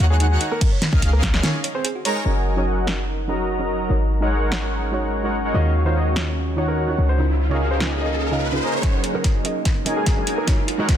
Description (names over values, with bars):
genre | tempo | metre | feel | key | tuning
future bass | 146 BPM | 4/4 | half-time | Gb major | A4 = 440 Hz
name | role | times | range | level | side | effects
airy dreamy lead | arpeggios | 0.0-2.2 s | F5 to Bb5 | -32 LUFS | right 1 dB | chorus, sidechain pumping
thumb-piano-like synth pluck | arpeggios | 0.0-2.2 s | Eb4 to Ab5 | -34 LUFS | right 5 dB | chorus, sidechain pumping, tape echo
soft supersaw | riff | 0.0-11.0 s | Eb3 to Bb5 | -25 LUFS | equal | sidechain pumping, low-pass filter, tape echo
warm 808-style bass | bass | 0.0-11.0 s | Gb1 to Eb2 | -21 LUFS | equal | sidechain pumping, high-pass filter
pop drum kit | drums | 0.0-11.0 s | hi-hat, ride cymbal, snare drum | -25 LUFS | equal | high-pass filter on hats, soft clipping on snare, high-pass filter on snare, high-pass filter on cymbals
dark concert grand piano | melody | 0.1-1.9, 5.5-10.5 s | Ab3 to F5 | -30 LUFS | equal | sidechain pumping, ping-pong delay
electronic kick drum | drums | 0.6-1.3, 8.8-11.0 s | none | -20 LUFS | equal | none
soft round pluck | accompaniment | 2.2-10.9 s | Db3 to Gb5 | -28 LUFS | right 3 dB | chorus, sidechain pumping, tape echo
shimmering ambient pad | sustained chords | 3.1-11.0 s | Db3 to Bb4 | -31 LUFS | right 2 dB | chorus, built-in reverb, vintage 12-bit sampler grit, sidechain pumping
riser | sound effects | 6.4-11.0 s | none | -29 LUFS | equal | none
room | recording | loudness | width
light reverb, digital ambience | dense, heavily limited modern master | -18 LUFS | side -10 dB against mid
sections
0.0-2.3 A section; 2.3-8.8 B section; 8.8-11.0 C section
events
drop 0.0-2.3; filter sweep on ambient pad 2.3-8.8; riser 6.4-8.8, 8.8-11.0; build-up 8.8-11.0; drum fill 8.8-11.0; filter sweep on supersaw synth 8.8-11.0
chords
0.4 Db69; 1.4 Absus4; 2.3 Gb6; 3.9 Ab7sus4; 5.5 Ebm9; 7.0 Db69; 8.8 Gb6